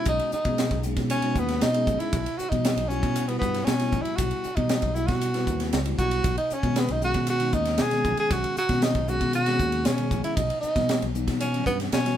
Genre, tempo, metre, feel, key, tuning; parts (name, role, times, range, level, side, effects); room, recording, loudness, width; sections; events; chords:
electric jazz fusion; 116 BPM; 4/4; straight; B major; A4 = 440 Hz
breathy tenor saxophone; melody; 0.0-12.2 s; B3 to G#4; -26 LUFS; right 1 dB
mellow tine electric piano; accompaniment; 0.0-12.2 s; D#3 to B4; -32 LUFS; left 2 dB
fingered electric bass; bass; 0.1-12.2 s; B1 to B2; -28 LUFS; left 1 dB
crisp fusion drum kit; drums; 0.1-12.2 s; hi-hat, kick drum, ride cymbal, snare drum; -28 LUFS; equal
light reverb; band playing live in one room; -22 LUFS; side -10 dB against mid
0.0-12.2 A section
0.0 B6; 2.1 Emadd9/B; 6.3 B6; 10.4 Emadd9/B